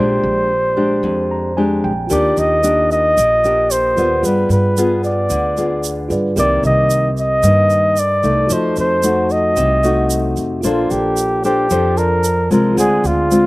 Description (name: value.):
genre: bossa nova.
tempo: 112 BPM.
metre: 4/4.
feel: straight.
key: unclear.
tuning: A4 = 441 Hz.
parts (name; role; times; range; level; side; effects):
breathy flugelhorn; melody; 0.0-13.5 s; F4 to Eb5; -16 LUFS; equal; none.
nylon-string guitar; accompaniment; 0.0-13.5 s; F2 to C5; -18 LUFS; left 2 dB; slapback echo.
tine electric piano; accompaniment; 0.0-13.5 s; F4 to D6; -24 LUFS; right 2 dB; none.
upright bass; bass; 0.0-13.5 s; Bb1 to G2; -21 LUFS; equal; none.
tube shaker; percussion; 2.1-13.5 s; none; -27 LUFS; right 8 dB; none.
room: little or no reverb.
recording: recorded outdoors, with no room sound.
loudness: -13 LUFS.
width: side -20 dB against mid.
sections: 0.0-13.5 A section.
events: tine electric piano fill 1.0-2.1.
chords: 0.0 Bb13; 2.1 Ebmaj7; 4.2 G7b9; 6.4 Cm9; 8.5 F7b9; 10.6 Bbmaj9; 12.8 Dm7b5.